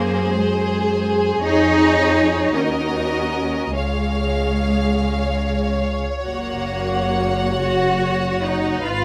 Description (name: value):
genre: classical, slow romantic movement for string orchestra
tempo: 43-55 BPM (dotted quarters)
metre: 6/8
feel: rubato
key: F# major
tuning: A4 = 441 Hz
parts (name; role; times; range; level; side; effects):
- clear studio violin section; melody; 0.0-9.0 s; B#4 to F#5; -29 LUFS; equal; none
- clear studio violin section; second line; 0.0-9.0 s; G#4 to C#5; -28 LUFS; equal; none
- rich studio viola section; accompaniment; 0.0-9.0 s; F#4 to Cb5; -28 LUFS; equal; none
- rich studio cello section; bass; 0.0-9.0 s; G#3 to F#4; -24 LUFS; equal; none
- rich studio double bass section; bass; 0.0-9.0 s; F#1 to F#2; -26 LUFS; equal; none
room: light reverb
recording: none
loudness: -20 LUFS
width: mono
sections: 0.0-9.0 A section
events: none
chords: 0.0 G#7/F#; 1.4 C#/E#; 2.6 D#m7; 3.7 C#; 6.2 F#